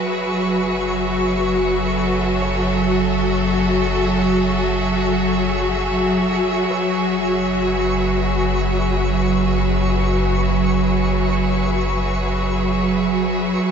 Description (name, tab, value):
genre	ambient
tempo	free time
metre	none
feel	none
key	unclear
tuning	A4 = 440 Hz
part	bright studio string section	sustained chords	0.0-13.7 s	F#3 to E5	-19 LUFS	left 1 dB	none
part	round analog bass	bass	0.0-13.6 s	F#1	-24 LUFS	left 1 dB	none
part	bowed-like drone	drone	0.0-13.7 s	F#3	-23 LUFS	right 4 dB	built-in reverb
part	twinkling granular texture	texture	0.0-13.6 s	C#6	-30 LUFS	equal	built-in reverb
part	concert harp	arpeggios	2.4-8.7 s	B4 to C#5	-40 LUFS	left 2 dB	none
room	wet shimmer reverb, RT60 8.3 s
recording	nothing above 7.7 kHz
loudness	-16 LUFS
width	side -7 dB against mid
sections	0.0-13.6 A section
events	fade-in on synth texture 0.0-13.6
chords	0.0 F#m7; 6.7 Eadd9/F#